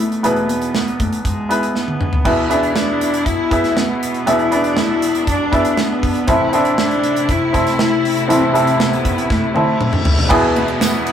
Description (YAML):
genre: piano-driven pop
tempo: 119 BPM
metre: 4/4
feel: straight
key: unclear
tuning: A4 = 440 Hz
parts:
  - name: warm cello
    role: melody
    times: 0.0-11.1 s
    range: G#3 to E4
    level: -20 LUFS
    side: left 2 dB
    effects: none
  - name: bright upright piano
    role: accompaniment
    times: 0.0-11.1 s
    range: E2 to E5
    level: -18 LUFS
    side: equal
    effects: none
  - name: modern studio drum kit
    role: drums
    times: 0.0-11.1 s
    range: crash cymbal, hi-hat, kick drum, ride cymbal, snare drum, toms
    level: -20 LUFS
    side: right 1 dB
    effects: none
  - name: clear studio string section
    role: sustained chords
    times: 2.3-11.1 s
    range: B2 to E4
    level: -23 LUFS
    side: left 1 dB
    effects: none
  - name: reverse cymbal and downlifter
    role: sound effects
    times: 9.6-11.1 s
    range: none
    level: -26 LUFS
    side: left 2 dB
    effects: none
  - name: tambourine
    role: percussion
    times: 10.8-10.9 s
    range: none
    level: -27 LUFS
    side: right 3 dB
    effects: none
room: moderate small room reverb, RT60 0.5 s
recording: rough rehearsal-room recording, warm saturation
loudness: -14 LUFS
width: side -9 dB against mid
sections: 0.0-2.3 A section; 2.3-10.3 B section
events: drum fill 1.8-2.3, 9.3-10.3; reverse cymbal 9.6-10.3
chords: 0.0 E; 6.3 Am; 10.3 E